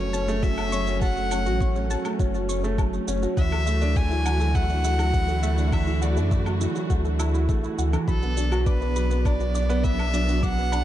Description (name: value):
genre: piano and strings electronica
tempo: 102 BPM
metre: 4/4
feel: straight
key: unclear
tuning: A4 = 439 Hz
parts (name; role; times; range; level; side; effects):
- rich violin; melody; 0.0-10.8 s; A4 to G#5; -30 LUFS; left 1 dB; digital delay
- dark symphonic string section; sustained chords; 0.0-10.8 s; D3 to F#4; -33 LUFS; right 1 dB; none
- warbly dusty pluck; arpeggios; 0.0-10.8 s; E4 to D6; -36 LUFS; left 4 dB; chorus, sidechain pumping, digital delay
- dark upright piano; riff; 0.0-10.8 s; E3 to F#4; -28 LUFS; right 2 dB; digital delay
- warm sub bass; bass; 0.0-10.8 s; F#1 to F#2; -25 LUFS; equal; sidechain pumping
- impact; sound effects; 0.0-1.0 s; none; barely audible; none; none
- shaker and woodblock; drums; 0.1-10.8 s; none; -37 LUFS; right 1 dB; none
- electronic kick drum; drums; 0.4-10.5 s; none; -24 LUFS; equal; none
room: light reverb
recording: dark, warm production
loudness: -21 LUFS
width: side -12 dB against mid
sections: 0.0-10.8 A section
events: impact 0.0-1.0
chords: 0.0 F#m; 3.4 Dadd9; 8.1 Bm